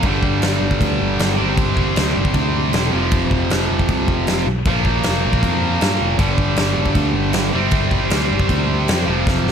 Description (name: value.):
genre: hard rock.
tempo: 156 BPM.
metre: 4/4.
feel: straight.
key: unclear.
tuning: A4 = 435 Hz.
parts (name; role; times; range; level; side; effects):
tight distorted guitar; riff; 0.0-9.5 s; F2 to C4; -19 LUFS; right 1 dB; distortion.
picked electric bass; bass; 0.0-9.5 s; E1 to G2; -21 LUFS; equal; none.
huge arena drum kit; drums; 0.0-9.5 s; crash cymbal, kick drum, snare drum; -20 LUFS; equal; none.
room: studio reverb.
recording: none.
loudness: -15 LUFS.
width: side -7 dB against mid.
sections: 0.0-9.5 A section.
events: drum fill 9.3.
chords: 0.0 G5; 1.4 C5/G; 2.9 F5; 4.7 Bb5; 6.2 G5; 7.5 C5/G.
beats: | 0.04 0.43 0.81 1.20 | 1.58 1.97 2.35 2.73 | 3.12 3.50 3.89 4.27 | 4.66 5.04 5.42 5.81 | 6.20 6.58 6.97 7.35 | 7.74 8.12 8.51 8.89 | 9.28.